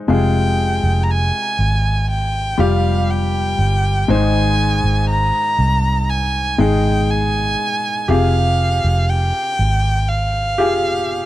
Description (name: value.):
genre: pop.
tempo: 60 BPM.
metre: 4/4.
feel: straight.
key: F minor.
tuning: A4 = 440 Hz.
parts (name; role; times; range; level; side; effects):
bright upright piano; accompaniment; 0.0-11.3 s; Ab2 to C5; -21 LUFS; left 3 dB; none.
warm violin; melody; 0.1-11.3 s; F5 to Bb5; -20 LUFS; right 1 dB; tape echo.
vintage muted fingered electric bass; bass; 0.1-11.3 s; F1 to C2; -18 LUFS; right 1 dB; none.
room: little or no reverb.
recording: dry, close 1970s-style studio recording.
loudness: -15 LUFS.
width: side -15 dB against mid.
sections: 0.0-11.3 A section.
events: none.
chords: 0.1 Fmadd9; 4.1 Ab; 8.1 Fmadd9.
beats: | 0.09 1.09 2.09 3.09 | 4.09 5.09 6.09 7.09 | 8.09 9.09 10.09 11.09.